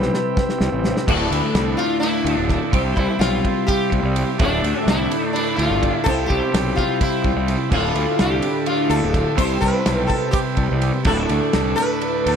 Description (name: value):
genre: psychedelic rock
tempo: 253 BPM (eighths)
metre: 7/8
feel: straight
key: unclear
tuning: A4 = 440 Hz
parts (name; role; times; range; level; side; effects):
- sitar; melody; 0.0-12.4 s; D4 to C5; -23 LUFS; left 1 dB; dub echo
- combo organ; sustained chords; 0.0-12.4 s; C4 to B5; -31 LUFS; right 6 dB; none
- twelve-string electric guitar; riff; 0.0-12.4 s; D2 to C5; -22 LUFS; left 1 dB; flanger, double-tracked left and right
- fuzz fingered electric bass; bass; 0.0-12.4 s; D1 to D2; -23 LUFS; equal; overdrive
- damped 70s drum kit; drums; 0.0-12.4 s; crash cymbal, kick drum, ride cymbal, snare drum; -23 LUFS; right 1 dB; none
room: light reverb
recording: echo-heavy mix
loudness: -17 LUFS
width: side -7 dB against mid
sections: 0.0-1.1 A section; 1.1-12.4 B section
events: drum fill 0.0-1.1; sitar solo 1.1-12.4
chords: 0.0 Cmaj7; 1.1 Dsus2; 2.7 Cmaj7; 4.4 Dmadd9; 6.1 Cmaj7; 7.7 Dmadd9; 9.4 Cmaj7; 11.1 Dsus2